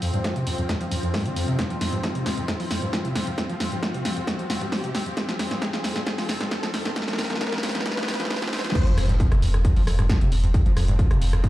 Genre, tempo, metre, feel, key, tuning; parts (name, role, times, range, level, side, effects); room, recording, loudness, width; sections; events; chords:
driving peak-time techno; 134 BPM; 4/4; straight; A4 = 441 Hz
overdriven acid bass; riff; 0.0-11.5 s; F2 to F3; -28 LUFS; equal; distortion, lush chorus, sidechain pumping, tape echo
swarming drone; drone; 0.0-11.5 s; F3 to C4; -33 LUFS; left 1 dB; built-in reverb, sidechain pumping
punchy analog drum machine; drums; 0.0-11.5 s; crash cymbal, hi-hat, rim click, snare drum; -28 LUFS; equal
riser and sub drop; sound effects; 0.0-10.5 s; -33 LUFS; equal
ethereal airy pad; texture; 0.0-8.8 s; F4 to G5; -39 LUFS; equal; ensemble chorus, built-in reverb, sidechain pumping
electronic kick drum; drums; 0.2-11.5 s; -23 LUFS; equal; high-pass filter on kick, high-pass filter on room
saturated sub bass; bass; 9.0-11.4 s; F1; -22 LUFS; equal; sidechain pumping, low-pass filter
digital ambience; played on a big sound system in a bare room, stone room reverb, high-pass filter; -22 LUFS; side -16 dB against mid
0.0-8.8 A section; 8.8-11.5 B section
build-up 0.0-8.8; drum fill 0.0-8.8; riser 0.0-8.8; filter sweep on acid bass 0.0-8.8; filter sweep 0.0-8.8; drop 8.8-11.5; impact 8.8-10.5
0.0 F5